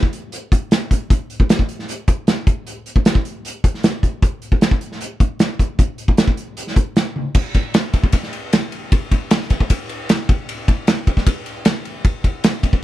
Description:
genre	rock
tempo	154 BPM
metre	4/4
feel	straight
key	none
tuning	none
part	loose indie drum kit	drums	0.0-12.8 s	crash cymbal, hi-hat, kick drum, ride cymbal, snare drum, toms	-16 LUFS	equal	none
room	little or no reverb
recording	none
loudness	-16 LUFS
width	side -15 dB against mid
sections	0.0-7.4 A section; 7.4-12.8 B section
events	drum fill 7.2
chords	none

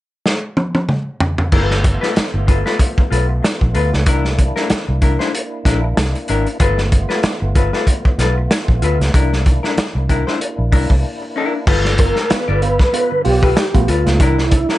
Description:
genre	funk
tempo	95 BPM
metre	4/4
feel	swing 56% on 16ths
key	G mixolydian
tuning	A4 = 439 Hz
part	crunchy breakbeat drum kit	drums	0.3-14.8 s	crash cymbal, hi-hat, kick drum, snare drum, toms	-16 LUFS	equal	none
part	vintage hollow-body jazz guitar	accompaniment	1.5-14.8 s	D4 to D5	-22 LUFS	left 5 dB	plate reverb
part	percussive tonewheel organ	sustained chords	1.5-11.7 s	A3 to F4	-27 LUFS	equal	overdrive, chorus vibrato, slow rotary speaker, plate reverb
part	vintage muted fingered electric bass	bass	1.5-14.6 s	G1 to D2	-17 LUFS	equal	none
part	reed electric piano	stabs	11.7-14.7 s	G2 to F4	-24 LUFS	right 4 dB	phaser, plate reverb
part	mellow tonewheel organ	melody	12.0-14.8 s	E4 to B4	-18 LUFS	right 1 dB	chorus vibrato, slow rotary speaker, plate reverb
room	light reverb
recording	nothing above 10.5 kHz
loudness	-13 LUFS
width	side -16 dB against mid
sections	0.0-1.5 A section; 1.5-11.7 B section; 11.7-14.8 C section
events	drum fill 0.3-1.5; break 11.0-11.7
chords	0.0 N.C.; 1.5 G9; 4.1 C9; 6.6 G9; 9.1 C9; 11.7 G9; 14.2 C9

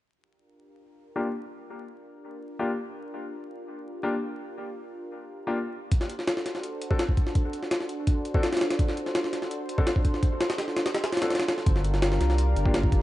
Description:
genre	drum and bass, jungle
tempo	167 BPM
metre	4/4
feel	straight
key	G minor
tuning	A4 = 441 Hz
part	lush unison pad	sustained chords	0.2-13.0 s	D4 to C5	-34 LUFS	equal	chorus
part	clear grand piano	stabs	1.2-12.7 s	Bb3 to A4	-33 LUFS	left 2 dB	low-pass filter, dub echo
part	jungle sampler-style drum kit	drums	5.9-13.0 s	hi-hat, kick drum, snare drum	-25 LUFS	equal	none
part	saturated sub bass	bass	11.7-13.0 s	G1 to C2	-24 LUFS	equal	none
room	light reverb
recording	vinyl crackle, nothing above 10.9 kHz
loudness	-24 LUFS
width	side -16 dB against mid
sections	0.2-11.7 A section; 11.7-13.0 B section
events	filter sweep on grand piano 0.2-11.7; kick drops out 10.9-11.7; drop 11.7-13.0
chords	0.2 Gm7; 5.9 D7; 11.7 Gm7

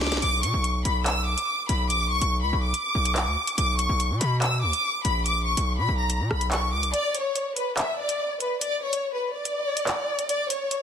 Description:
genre	hip hop, drill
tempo	143 BPM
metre	4/4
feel	half-time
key	B harmonic minor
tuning	A4 = 441 Hz
part	warm studio violin section	melody	0.0-10.8 s	B4 to E6	-25 LUFS	left 1 dB	none
part	distorted 808-style bass	bass	0.0-6.9 s	A#1 to B2	-26 LUFS	equal	distortion
part	drill drum kit	drums	0.0-10.8 s	handclaps, hi-hat, rim click, snare drum	-28 LUFS	equal	none
room	light reverb, digital ambience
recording	dense, heavily limited modern master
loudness	-23 LUFS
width	side -8 dB against mid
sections	0.0-6.9 A section; 6.9-10.8 B section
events	drum fill 0.0; break 6.9-10.8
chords	0.0 Bm; 6.9 N.C.

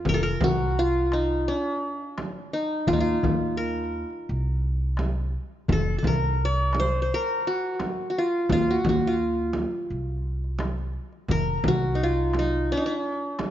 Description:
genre	Turkish makam ensemble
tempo	86 BPM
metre	4/4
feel	straight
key	F makam hicaz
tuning	A4 = 437 Hz
part	qanun	melody	0.0-13.5 s	D4-40c to D5-40c	-25 LUFS	equal	tape echo
part	upright bass	bass	0.1-12.7 s	F1 to Eb2	-26 LUFS	right 1 dB	none
part	darbuka	percussion	0.1-13.5 s	none	-30 LUFS	left 4 dB	none
part	frame drum	percussion	0.1-13.5 s	none	-30 LUFS	right 2 dB	none
room	light reverb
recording	nothing above 7.5 kHz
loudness	-23 LUFS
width	side -11 dB against mid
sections	0.1-13.5 A section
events	none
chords	none

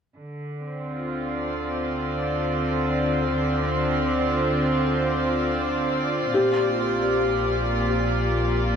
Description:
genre	ambient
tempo	free time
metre	none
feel	none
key	D minor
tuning	A4 = 440 Hz
part	rich chamber string section	sustained chords	0.2-8.8 s	Bb2 to D5	-22 LUFS	equal	low-pass filter, shimmer reverb
part	round analog bass	bass	0.2-8.8 s	Bb1 to D2	-33 LUFS	equal	none
part	felt-muted upright piano	arpeggios	6.3-8.8 s	G4	-24 LUFS	left 3 dB	ping-pong delay, shimmer reverb
room	wet huge ambient reverb, RT60 8.3 s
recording	none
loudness	-21 LUFS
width	side -7 dB against mid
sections	0.2-8.8 A section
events	fade-in on analog synth bass 0.2-8.8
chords	0.2 Dm7; 6.3 Bb

